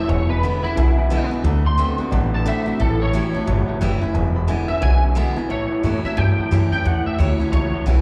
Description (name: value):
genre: rockabilly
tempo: 178 BPM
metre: 4/4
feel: swing 62% on 8ths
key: A mixolydian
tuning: A4 = 440 Hz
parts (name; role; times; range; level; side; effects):
- electric guitar at the edge of break-up; melody; 0.0-7.8 s; E4 to C6; -28 LUFS; equal; ensemble chorus, plate reverb, analog delay
- dark upright piano; accompaniment; 0.0-8.0 s; B4 to C6; -34 LUFS; equal; slapback echo
- picked steel-string acoustic guitar; accompaniment; 0.0-8.0 s; E2 to F#4; -29 LUFS; equal; none
- electric guitar through a small old amp; riff; 0.0-8.0 s; E2 to B3; -28 LUFS; equal; none
- upright bass; bass; 0.1-8.0 s; E1 to A2; -21 LUFS; equal; none
room: light reverb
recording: live gig heard through the venue's PA, recital hall reverb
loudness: -20 LUFS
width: mono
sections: 0.0-5.5 A section; 5.5-8.0 B section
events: clean electric guitar solo 0.0-5.5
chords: 0.1 E7; 1.4 D7; 2.8 A7; 4.1 E7; 5.5 A7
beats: | 0.09 0.43 0.77 1.10 | 1.44 1.78 2.12 2.46 | 2.79 3.13 3.47 3.81 | 4.15 4.48 4.82 5.16 | 5.50 5.84 6.18 6.51 | 6.85 7.19 7.53 7.87